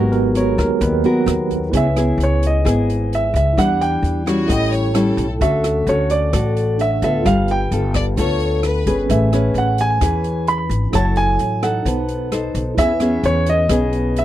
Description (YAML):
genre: bossa nova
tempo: 130 BPM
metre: 4/4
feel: straight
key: C# minor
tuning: A4 = 440 Hz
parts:
  - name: barky tine electric piano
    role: accompaniment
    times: 0.0-14.2 s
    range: F#3 to F#6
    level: -24 LUFS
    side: right 5 dB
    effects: medium stereo tremolo
  - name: nylon-string guitar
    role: accompaniment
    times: 0.0-14.2 s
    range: G#2 to C#5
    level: -20 LUFS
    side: left 2 dB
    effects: none
  - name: upright bass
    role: bass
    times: 0.0-14.2 s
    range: F#1 to E2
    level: -20 LUFS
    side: equal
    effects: none
  - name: open jazz drum kit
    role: drums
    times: 0.1-14.2 s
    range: hi-hat, kick drum, rim click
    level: -26 LUFS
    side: equal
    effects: none
  - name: warm grand piano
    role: melody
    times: 1.8-14.2 s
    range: C#5 to B5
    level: -20 LUFS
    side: right 2 dB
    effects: slapback echo
  - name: clear chamber violin section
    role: second line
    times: 4.3-9.0 s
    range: F#4 to D#5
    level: -25 LUFS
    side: left 4 dB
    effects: none
room: light reverb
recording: dry, close 1970s-style studio recording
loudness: -15 LUFS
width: side -13 dB against mid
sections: 0.0-1.7 A section; 1.7-14.2 B section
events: tine electric piano solo 0.0-1.7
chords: 0.0 G#m9; 1.7 C#m7; 3.6 Em9; 4.5 A7; 5.4 Dmaj7; 7.3 G9; 9.1 Amaj9; 10.9 F#m7; 11.9 B7b9; 12.8 E6